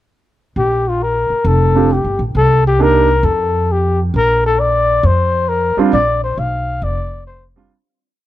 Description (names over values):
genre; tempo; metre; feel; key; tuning
jazz, small-group swing and bop; 134 BPM; 4/4; swing 67% on 8ths; Bb major; A4 = 441 Hz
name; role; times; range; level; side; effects
breathy trumpet; melody; 0.6-7.4 s; F4 to F5; -15 LUFS; left 2 dB; none
upright bass; bass; 0.6-7.7 s; F1 to F2; -16 LUFS; equal; none
warm grand piano; accompaniment; 1.8-3.1, 5.8-7.7 s; G3 to G4; -15 LUFS; right 6 dB; none
room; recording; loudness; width
studio reverb; dry, close 1970s-style studio recording; -12 LUFS; side -14 dB against mid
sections
0.6-7.7 A section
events
fade-out 5.9-7.7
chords
0.6 Bb5; 2.4 Cm7; 3.2 F; 4.1 Bbadd9